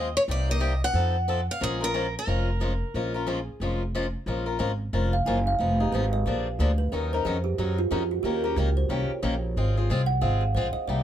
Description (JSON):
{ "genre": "acoustic string swing (jazz manouche)", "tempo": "181 BPM", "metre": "4/4", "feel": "swing 61% on 8ths", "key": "Bb minor", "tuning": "A4 = 440 Hz", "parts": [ { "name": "picked steel-string acoustic guitar", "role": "melody", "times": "0.0-3.9 s", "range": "Ab4 to Gb5", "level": "-29 LUFS", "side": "equal", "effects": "none" }, { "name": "picked swing-style acoustic guitar", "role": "accompaniment", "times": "0.0-11.0 s", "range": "C3 to Bb4", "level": "-30 LUFS", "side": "left 4 dB", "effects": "none" }, { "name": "upright bass", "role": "bass", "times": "0.0-11.0 s", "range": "F1 to Gb2", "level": "-26 LUFS", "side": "equal", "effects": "none" }, { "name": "kalimba", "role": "second line", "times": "5.1-11.0 s", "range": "F4 to Ab5", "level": "-29 LUFS", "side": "right 4 dB", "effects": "none" } ], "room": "light reverb", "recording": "none", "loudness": "-24 LUFS", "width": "side -10 dB against mid", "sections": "0.0-4.3 A section; 4.3-11.0 B section", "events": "kalimba solo 4.3-11.0", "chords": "0.3 Cm7; 1.0 F7b9; 1.6 Bbm7; 5.6 Fm7b5; 6.3 Bb7; 6.9 Ebm9; 8.2 Eb6; 9.6 Ab69", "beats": "| 0.29 0.62 0.95 1.28 | 1.62 1.95 2.28 2.61 | 2.94 3.27 3.60 3.94 | 4.27 4.60 4.93 5.26 | 5.59 5.92 6.25 6.58 | 6.92 7.25 7.58 7.91 | 8.24 8.57 8.90 9.23 | 9.56 9.89 10.22 10.55 | 10.88" }